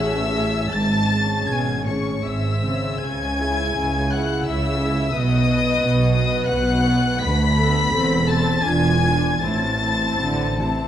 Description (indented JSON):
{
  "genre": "classical, slow romantic movement for string orchestra",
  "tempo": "71-90 BPM",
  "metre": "3/4",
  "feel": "rubato",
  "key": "A minor from 7.2 s",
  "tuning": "A4 = 441 Hz",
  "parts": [
    { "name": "warm chamber violin section", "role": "melody", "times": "0.0-10.9 s", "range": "A5 to B6", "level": "-26 LUFS", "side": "left 4 dB", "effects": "none" },
    { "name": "warm chamber violin section", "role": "second line", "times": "0.0-10.9 s", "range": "C#5 to B5", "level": "-26 LUFS", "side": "left 4 dB", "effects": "none" },
    { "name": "dark chamber viola section", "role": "accompaniment", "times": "0.0-10.9 s", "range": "B3 to B4", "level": "-26 LUFS", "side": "equal", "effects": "none" },
    { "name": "dark chamber cello section", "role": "bass", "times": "0.0-10.9 s", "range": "D2 to D3", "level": "-23 LUFS", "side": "right 2 dB", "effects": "none" },
    { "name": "warm chamber double bass section", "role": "bass", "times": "0.0-10.9 s", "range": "E1 to D2", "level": "-24 LUFS", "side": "right 2 dB", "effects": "none" }
  ],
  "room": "moderate scoring stage reverb, RT60 1.7 s",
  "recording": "dark, warm production",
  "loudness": "-18 LUFS",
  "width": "side -10 dB against mid",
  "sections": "0.0-10.9 A section",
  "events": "none",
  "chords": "0.0 Amaj7; 0.7 G#sus4; 2.2 G#; 3.0 C#m; 5.2 B; 7.2 Bm7/D; 7.9 Am/E; 8.7 E7b9; 9.4 Am"
}